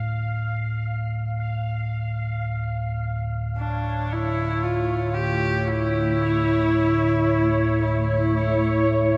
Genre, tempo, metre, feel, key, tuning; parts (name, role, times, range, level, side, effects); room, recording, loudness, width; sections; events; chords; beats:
dark ambient drone; free time; D harmonic minor; A4 = 440 Hz
deep rumbling drone; drone; 0.0-9.2 s; D2 to A2; -27 LUFS; equal; built-in reverb
bubbling stepped-filter texture; texture; 0.0-9.2 s; C#5 to F5; -34 LUFS; equal; chorus, built-in reverb, shimmer reverb
granular cloud pad; sustained chords; 5.2-9.2 s; A3 to C#5; -29 LUFS; equal; built-in reverb, shimmer reverb
clear horsehead fiddle; melody; 3.6-9.2 s; D4 to G4; -26 LUFS; equal; shimmer reverb, delay
wet cathedral reverb, RT60 5.1 s; cassette tape; -24 LUFS; mono
0.0-9.2 A section
0.0 Dm; 3.5 A
free time